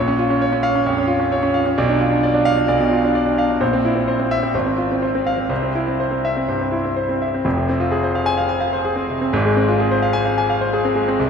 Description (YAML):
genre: classical, virtuoso piano study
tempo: 129 BPM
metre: 4/4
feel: rubato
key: F minor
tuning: A4 = 443 Hz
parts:
  - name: clear concert grand piano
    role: solo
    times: 0.0-11.3 s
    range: F1 to Ab5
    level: -16 LUFS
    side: equal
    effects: none
room: wet huge ambient reverb, RT60 7.9 s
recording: in a vast, echoing space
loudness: -16 LUFS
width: side -6 dB against mid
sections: 0.0-7.4 A section; 7.4-11.3 B section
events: none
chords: 0.0 Bbm; 1.8 Bdim; 3.6 C7/Bb; 4.5 Fm/Ab; 5.5 C; 7.4 Fm; 9.3 Fm/Ab